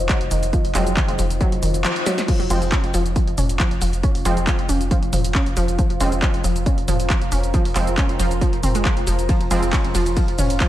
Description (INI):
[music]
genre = driving peak-time techno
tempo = 137 BPM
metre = 4/4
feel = straight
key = unclear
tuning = A4 = 441 Hz
[part]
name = warm sub bass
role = bass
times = 0.0-10.6 s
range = F1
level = -24 LUFS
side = equal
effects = tube saturation, sidechain pumping, low-pass filter
[part]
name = deep dark ambient pad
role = texture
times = 0.0-10.7 s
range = F4 to Bb5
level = -29 LUFS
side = equal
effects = chorus, built-in reverb, sidechain pumping
[part]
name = wide unison pluck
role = riff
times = 0.1-10.7 s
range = Eb3 to Db4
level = -25 LUFS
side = equal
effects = sidechain pumping, tape echo
[part]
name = electronic kick drum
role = drums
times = 0.1-10.7 s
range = none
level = -21 LUFS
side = equal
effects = none
[part]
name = punchy analog drum machine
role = drums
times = 0.1-10.7 s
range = crash cymbal, handclaps, hi-hat, ride cymbal, shaker, snare drum, toms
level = -26 LUFS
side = equal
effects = none
[part]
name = sync-sweep polysynth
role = stabs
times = 0.7-9.6 s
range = F3 to C4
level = -28 LUFS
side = right 2 dB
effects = chorus, sidechain pumping, tape echo
[sound]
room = light reverb, digital ambience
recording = none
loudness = -17 LUFS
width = side -13 dB against mid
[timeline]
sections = 0.0-2.3 A section; 2.3-10.7 B section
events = filter sweep on synth arpeggio sound 0.0-2.3; band accent 1.8; drum fill 2.1; drop 2.3-10.7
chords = 0.0 F5